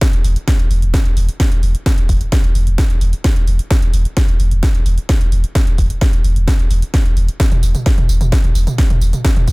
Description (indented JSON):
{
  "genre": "driving peak-time techno",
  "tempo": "130 BPM",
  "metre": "4/4",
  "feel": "straight",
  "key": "unclear",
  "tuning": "A4 = 441 Hz",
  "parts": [
    { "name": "electronic kick drum", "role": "drums", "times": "0.0-9.5 s", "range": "none", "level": "-14 LUFS", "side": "equal", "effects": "none" },
    { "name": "techno drum kit", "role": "drums", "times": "0.0-9.5 s", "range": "hi-hat, snare drum, tambourine, toms", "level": "-22 LUFS", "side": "equal", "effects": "none" },
    { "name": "warm sub bass", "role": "bass", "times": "0.1-9.5 s", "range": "E1", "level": "-15 LUFS", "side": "equal", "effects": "tube saturation, sidechain pumping, low-pass filter" }
  ],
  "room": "little or no reverb",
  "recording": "echo-heavy mix",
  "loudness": "-12 LUFS",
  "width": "side -25 dB against mid",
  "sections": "0.0-9.5 A section",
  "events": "none",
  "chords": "none"
}